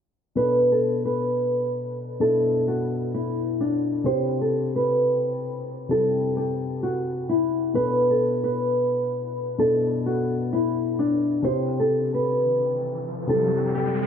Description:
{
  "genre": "hip hop",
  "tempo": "130 BPM",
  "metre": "4/4",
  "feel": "half-time",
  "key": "B phrygian",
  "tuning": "A4 = 439 Hz",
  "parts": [
    { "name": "nylon-string guitar", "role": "melody", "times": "0.4-14.1 s", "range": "D4 to C5", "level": "-22 LUFS", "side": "equal", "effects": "none" },
    { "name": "felt-muted upright piano", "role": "accompaniment", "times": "0.4-14.1 s", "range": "B2 to A4", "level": "-28 LUFS", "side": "left 4 dB", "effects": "none" },
    { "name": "riser", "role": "sound effects", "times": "12.5-14.1 s", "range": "none", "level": "-32 LUFS", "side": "right 1 dB", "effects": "none" }
  ],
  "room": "light reverb, studio reverb",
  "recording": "low-pass filter",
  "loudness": "-21 LUFS",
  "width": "side -8 dB against mid",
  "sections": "0.4-14.1 A section",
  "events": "filter sweep 0.4-14.1; riser 12.5-14.1",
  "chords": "0.4 Bm7; 4.1 C; 7.8 Bm7; 11.4 C"
}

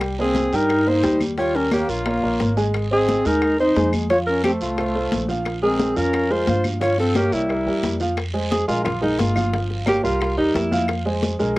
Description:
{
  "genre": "Afro-Cuban jazz",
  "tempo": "177 BPM",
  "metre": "4/4",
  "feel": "straight",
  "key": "F minor from 8.2 s",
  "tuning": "A4 = 439 Hz",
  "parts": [
    { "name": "warm upright piano", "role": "accompaniment", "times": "0.0-11.6 s", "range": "F3 to Ab5", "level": "-24 LUFS", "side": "right 1 dB", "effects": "cassette tape" },
    { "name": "upright bass", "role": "bass", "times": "0.0-11.6 s", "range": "G1 to G2", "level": "-26 LUFS", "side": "equal", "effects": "none" },
    { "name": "bongos", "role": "percussion", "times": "0.0-11.6 s", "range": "none", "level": "-30 LUFS", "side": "left 4 dB", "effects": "none" },
    { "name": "claves", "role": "percussion", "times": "0.0-11.6 s", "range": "none", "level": "-36 LUFS", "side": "left 4 dB", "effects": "none" },
    { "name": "congas", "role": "percussion", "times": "0.0-11.6 s", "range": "none", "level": "-28 LUFS", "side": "left 2 dB", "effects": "none" },
    { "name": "guiro", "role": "percussion", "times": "0.0-11.6 s", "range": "none", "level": "-36 LUFS", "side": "right 4 dB", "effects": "none" },
    { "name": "clear alto saxophone", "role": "melody", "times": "0.2-10.9 s", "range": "Eb4 to Db5", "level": "-22 LUFS", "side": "equal", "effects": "cassette tape" },
    { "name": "breathy bass recorder", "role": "second line", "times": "0.2-8.0 s", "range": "G3 to F4", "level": "-23 LUFS", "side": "left 2 dB", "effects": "cassette tape" }
  ],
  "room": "moderate booth ambience, RT60 0.2 s",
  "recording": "home recording on cassette",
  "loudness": "-18 LUFS",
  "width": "side -19 dB against mid",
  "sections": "0.0-8.2 A section; 8.2-11.6 B section",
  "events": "alto saxophone solo 8.2-11.6",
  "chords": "0.0 Cm7; 1.4 Eb9; 2.7 Abadd9; 4.1 F; 5.5 Bbm9; 6.8 Gm7b5; 7.5 C7; 8.2 Fm; 8.9 Bb5; 9.5 Gm7b5; 10.2 C7; 10.9 Fm"
}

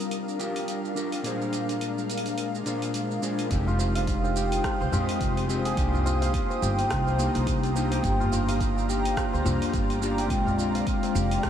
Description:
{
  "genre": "organic downtempo",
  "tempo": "106 BPM",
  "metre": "4/4",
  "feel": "swing 58% on 16ths",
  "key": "F dorian",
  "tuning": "A4 = 440 Hz",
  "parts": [
    { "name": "mellow electric guitar", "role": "accompaniment", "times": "0.0-11.5 s", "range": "Bb2 to C5", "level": "-30 LUFS", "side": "left 2 dB", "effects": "lush chorus, sidechain pumping, analog delay" },
    { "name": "ethereal airy pad", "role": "sustained chords", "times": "0.0-11.5 s", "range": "G3 to Eb6", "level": "-32 LUFS", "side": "left 1 dB", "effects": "ensemble chorus, built-in reverb, sidechain pumping" },
    { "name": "deep house drum kit", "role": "drums", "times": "0.0-11.5 s", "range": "hi-hat, rim click, shaker", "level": "-37 LUFS", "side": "right 3 dB", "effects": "none" },
    { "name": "upright bass", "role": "bass", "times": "3.5-11.5 s", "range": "F1 to D2", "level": "-28 LUFS", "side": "right 1 dB", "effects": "sidechain pumping" },
    { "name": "electronic kick drum", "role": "drums", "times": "3.5-11.5 s", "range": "none", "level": "-30 LUFS", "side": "right 1 dB", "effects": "none" },
    { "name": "santur", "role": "arpeggios", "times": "3.7-11.5 s", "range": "F4 to F5", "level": "-30 LUFS", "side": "equal", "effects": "analog delay" },
    { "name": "tabla", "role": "percussion", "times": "3.7-11.1 s", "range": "none", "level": "-36 LUFS", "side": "equal", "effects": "none" }
  ],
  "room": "moderate huge ambient reverb, RT60 8.2 s",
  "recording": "dreamy mix soaked in reverb",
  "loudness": "-24 LUFS",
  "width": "side -9 dB against mid",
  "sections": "0.0-3.5 A section; 3.5-11.5 B section",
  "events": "none",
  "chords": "0.0 Gm7; 1.2 Bb7; 3.5 Fm7; 5.8 Cm7; 8.0 Gm7; 10.3 Bb7"
}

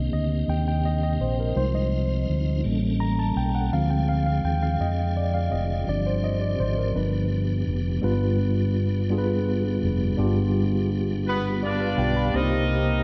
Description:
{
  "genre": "slow gospel",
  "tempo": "56 BPM (dotted quarters)",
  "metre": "6/8",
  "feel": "straight",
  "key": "unclear",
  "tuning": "A4 = 441 Hz",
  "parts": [
    { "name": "mellow tine electric piano", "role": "accompaniment", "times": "0.0-13.0 s", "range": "G2 to B5", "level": "-28 LUFS", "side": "equal", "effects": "none" },
    { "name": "tonewheel organ", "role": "sustained chords", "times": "0.0-12.3 s", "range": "C3 to A4", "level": "-35 LUFS", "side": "equal", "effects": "slow rotary speaker, chorus vibrato" },
    { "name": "fingered electric bass", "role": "bass", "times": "0.0-13.0 s", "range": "F1 to F2", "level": "-27 LUFS", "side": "equal", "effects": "none" },
    { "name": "clear horn section", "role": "melody", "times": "11.3-13.0 s", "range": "B3 to Eb5", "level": "-29 LUFS", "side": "equal", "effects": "slapback echo" }
  ],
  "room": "moderate concert hall reverb, RT60 2.0 s",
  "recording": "dark, warm production",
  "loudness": "-24 LUFS",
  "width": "mono",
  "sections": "0.0-8.0 A section; 8.0-12.3 B section",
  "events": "tine electric piano solo 0.0-8.0",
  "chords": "0.0 Cm7; 1.6 Fm7/C; 2.6 A7b9; 3.7 Dm7b5; 5.9 G7sus4; 7.0 G7; 12.3 Cm7"
}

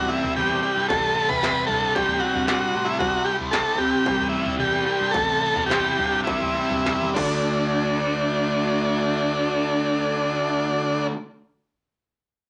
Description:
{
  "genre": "psychedelic rock",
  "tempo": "97-114 BPM",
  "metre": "4/4",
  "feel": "straight",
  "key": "D mixolydian",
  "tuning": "A4 = 440 Hz",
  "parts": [
    { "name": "combo organ", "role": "melody", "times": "0.0-11.1 s", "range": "D4 to B4", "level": "-25 LUFS", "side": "equal", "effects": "none" },
    { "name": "bright tonewheel organ", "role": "sustained chords", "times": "0.0-11.1 s", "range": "G3 to A5", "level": "-39 LUFS", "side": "equal", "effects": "none" },
    { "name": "fuzz guitar", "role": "riff", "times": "0.0-11.2 s", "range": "C3 to E4", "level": "-28 LUFS", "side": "equal", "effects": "distortion, phaser" },
    { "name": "fuzz fingered electric bass", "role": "bass", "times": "0.0-11.1 s", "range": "A1 to A2", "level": "-35 LUFS", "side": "equal", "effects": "overdrive" },
    { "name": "industrial drum kit", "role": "drums", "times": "0.2-7.3 s", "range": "crash cymbal, kick drum, snare drum, toms", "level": "-32 LUFS", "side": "equal", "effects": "distortion" }
  ],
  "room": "wet studio reverb, RT60 0.6 s",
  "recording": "none",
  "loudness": "-23 LUFS",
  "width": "mono",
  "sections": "0.0-7.5 A section; 7.5-12.4 B section",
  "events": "slowing down 3.0-7.5; drum fill 6.9-7.5",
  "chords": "0.0 C; 7.2 D"
}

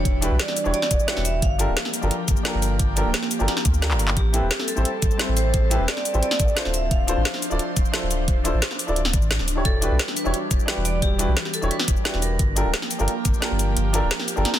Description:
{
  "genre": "liquid drum and bass",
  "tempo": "175 BPM",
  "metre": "4/4",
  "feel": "straight",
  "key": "unclear",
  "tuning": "A4 = 441 Hz",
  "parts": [
    { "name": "vibraphone with hard mallets", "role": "melody", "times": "0.0-1.7, 4.2-7.2, 9.7-14.6 s", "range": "G4 to F5", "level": "-29 LUFS", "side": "right 1 dB", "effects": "ping-pong delay" },
    { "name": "dark baby grand piano", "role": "accompaniment", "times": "0.0-14.5 s", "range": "C4 to A5", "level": "-28 LUFS", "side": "equal", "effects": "dub echo" },
    { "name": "airy breathy pad", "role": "sustained chords", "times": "0.0-14.6 s", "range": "E3 to C5", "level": "-30 LUFS", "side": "equal", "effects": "chorus, phaser, sidechain pumping" },
    { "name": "warm sub bass", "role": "bass", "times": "0.0-14.4 s", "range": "D1 to D2", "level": "-23 LUFS", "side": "equal", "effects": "none" },
    { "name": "electronic kick drum", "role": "drums", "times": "0.1-13.3 s", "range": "none", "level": "-22 LUFS", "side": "equal", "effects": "none" },
    { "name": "garage drum kit", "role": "drums", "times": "0.1-14.6 s", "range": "handclaps, hi-hat, shaker, snare drum", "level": "-25 LUFS", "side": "equal", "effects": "none" }
  ],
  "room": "light reverb, digital ambience",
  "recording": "dense, heavily limited modern master",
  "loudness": "-19 LUFS",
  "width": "side -12 dB against mid",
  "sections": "0.0-14.6 A section",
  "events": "kick drops out 3.8-4.2, 13.8-14.6; drum fill 3.9",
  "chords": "0.0 Em7; 1.4 Gm7; 4.2 Am7; 6.7 Dm7; 9.7 Em7; 12.4 Gm7"
}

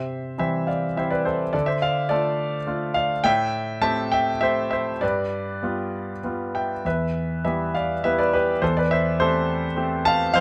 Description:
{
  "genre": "classical, lyrical solo piano",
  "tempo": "103 BPM",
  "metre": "3/4",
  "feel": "rubato",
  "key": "unclear",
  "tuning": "A4 = 439 Hz",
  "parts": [
    { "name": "clear concert grand piano", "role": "solo", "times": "0.0-10.4 s", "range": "E2 to A5", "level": "-23 LUFS", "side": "equal", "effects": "none" }
  ],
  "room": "light reverb",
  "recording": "close, detailed microphones",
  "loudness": "-23 LUFS",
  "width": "mono",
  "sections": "0.0-10.4 A section",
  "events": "none",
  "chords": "0.0 C; 1.5 Dm; 3.2 Am7; 5.0 G7; 6.9 Em; 8.6 Am7/E"
}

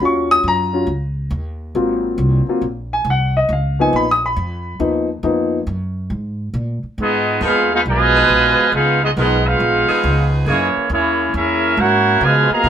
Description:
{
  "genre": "jazz, big band swing",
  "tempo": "138 BPM",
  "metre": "4/4",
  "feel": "swing 67% on 8ths",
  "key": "Db mixolydian",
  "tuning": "A4 = 443 Hz",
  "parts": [
    { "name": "warm grand piano", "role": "accompaniment", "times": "0.0-5.6 s", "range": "F3 to Eb6", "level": "-16 LUFS", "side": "left 2 dB", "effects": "none" },
    { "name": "upright bass", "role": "bass", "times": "0.0-12.7 s", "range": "Ab1 to Db3", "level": "-20 LUFS", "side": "equal", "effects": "none" },
    { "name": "clear trumpet section", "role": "melody", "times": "7.0-12.7 s", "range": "Bb3 to Bb5", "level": "-15 LUFS", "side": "right 2 dB", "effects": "none" },
    { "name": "dark trombone section", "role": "second line", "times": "7.0-12.7 s", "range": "Cb3 to Gb4", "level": "-20 LUFS", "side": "equal", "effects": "none" },
    { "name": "clear saxophone section", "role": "sustained chords", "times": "7.4-12.7 s", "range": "Fb3 to Cb5", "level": "-22 LUFS", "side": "right 2 dB", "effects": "none" }
  ],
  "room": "moderate studio ambience, RT60 0.5 s",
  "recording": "band playing live in one room, faint mains hum",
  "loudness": "-14 LUFS",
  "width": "side -9 dB against mid",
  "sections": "0.0-7.0 A section; 7.0-12.7 B section",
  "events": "grand piano solo 0.0-7.0",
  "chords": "0.0 Ebm7; 1.8 Ab13; 3.5 Db13 (rootless); 7.0 Db13; 10.5 Gb13"
}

